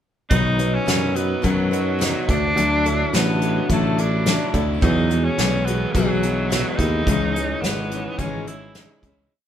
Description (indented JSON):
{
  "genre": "folk rock and heartland rock",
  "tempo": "107 BPM",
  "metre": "4/4",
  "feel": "straight",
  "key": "unclear",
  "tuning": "A4 = 442 Hz",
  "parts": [
    { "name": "bright tenor saxophone", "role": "melody", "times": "0.3-9.0 s", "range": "F#3 to E4", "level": "-25 LUFS", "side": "equal", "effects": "none" },
    { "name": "picked steel-string acoustic guitar", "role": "accompaniment", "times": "0.3-9.3 s", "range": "B2 to B4", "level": "-26 LUFS", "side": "left 4 dB", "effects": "none" },
    { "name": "crunchy overdriven guitar", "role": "riff", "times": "0.3-9.3 s", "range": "E2 to F#4", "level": "-27 LUFS", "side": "right 2 dB", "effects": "none" },
    { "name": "picked electric bass", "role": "bass", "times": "0.3-9.3 s", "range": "G#1 to F#2", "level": "-23 LUFS", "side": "equal", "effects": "none" },
    { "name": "soft brush drum kit", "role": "drums", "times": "0.3-9.2 s", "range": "hi-hat, kick drum, snare drum", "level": "-24 LUFS", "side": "equal", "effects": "none" }
  ],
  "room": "moderate studio reverb, RT60 0.6 s",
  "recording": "band playing live in one room",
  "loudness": "-18 LUFS",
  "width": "side -10 dB against mid",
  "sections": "0.3-9.3 verse",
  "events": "fade-out 7.1-9.3",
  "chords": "0.3 B; 2.3 Dadd9; 4.8 Eadd9; 7.1 C#madd9",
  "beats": "| 0.31 0.88 1.44 2.01 | 2.57 3.13 3.70 4.26 | 4.83 5.39 5.95 6.51 | 7.07 7.63 8.20 8.76"
}